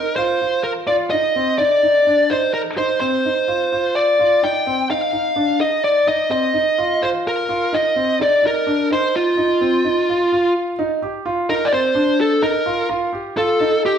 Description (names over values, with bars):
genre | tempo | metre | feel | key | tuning
progressive instrumental, progressive | 254 BPM (eighths) | 7/8 | straight | F mixolydian | A4 = 440 Hz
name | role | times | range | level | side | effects
fuzz lead guitar | melody | 0.0-14.0 s | F4 to G5 | -17 LUFS | equal | distortion
warm concert grand piano | arpeggios | 0.0-14.0 s | C4 to G4 | -21 LUFS | right 1 dB | none
room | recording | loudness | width
wet stone room reverb, RT60 1.2 s | band playing live in one room | -16 LUFS | side -8 dB against mid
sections
0.0-10.8 A section; 10.8-14.0 B section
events
lead electric guitar solo 10.8-14.0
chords
0.0 F7(no3)